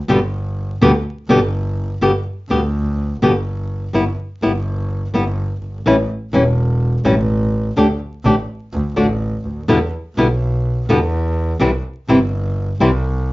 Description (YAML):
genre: tango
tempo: 125 BPM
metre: 4/4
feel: rubato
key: G major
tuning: A4 = 435 Hz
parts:
  - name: clear double bass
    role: bass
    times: 0.0-13.3 s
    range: E1 to E2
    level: -19 LUFS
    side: equal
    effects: none
  - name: flamenco guitar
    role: accompaniment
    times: 0.1-12.9 s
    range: B2 to G4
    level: -14 LUFS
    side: left 1 dB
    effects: none
room: moderate studio reverb, RT60 0.6 s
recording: vinyl crackle, nothing above 7.5 kHz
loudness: -15 LUFS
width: side -19 dB against mid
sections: 0.0-2.0 A section; 2.0-13.3 A section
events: none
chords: 0.1 G; 3.9 Em/G; 5.9 A7; 7.8 Dsus4; 8.7 D5; 9.7 Em7; 11.6 C